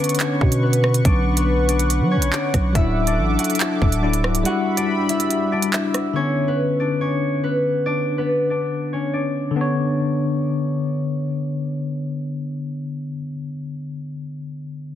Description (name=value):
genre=hip hop, drill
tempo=141 BPM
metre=4/4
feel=half-time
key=B minor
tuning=A4 = 440 Hz
part: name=concert harp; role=melody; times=0.0-12.4 s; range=B3 to F#5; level=-23 LUFS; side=left 1 dB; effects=low-pass filter, tape echo
part: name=bell-like tine electric piano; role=accompaniment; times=0.0-15.0 s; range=D3 to C#5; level=-24 LUFS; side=left 2 dB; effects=medium stereo tremolo, low-pass filter
part: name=warm analog pad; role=sustained chords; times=0.0-6.1 s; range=G3 to D6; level=-28 LUFS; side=equal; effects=chorus
part: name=drill drum kit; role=drums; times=0.0-6.0 s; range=handclaps, hi-hat, kick drum, rim click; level=-21 LUFS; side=right 1 dB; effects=none
part: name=growling 808-style bass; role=bass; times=0.4-4.4 s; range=C#1 to F#3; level=-20 LUFS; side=right 1 dB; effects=none
room=light reverb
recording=dense, heavily limited modern master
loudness=-18 LUFS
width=side -11 dB against mid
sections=0.0-6.2 A section; 6.2-9.6 B section; 9.6-13.0 C section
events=kick muted 4.5-6.2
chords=0.0 Bmadd9; 2.8 Dadd9; 4.5 Emadd9; 6.2 Bmadd9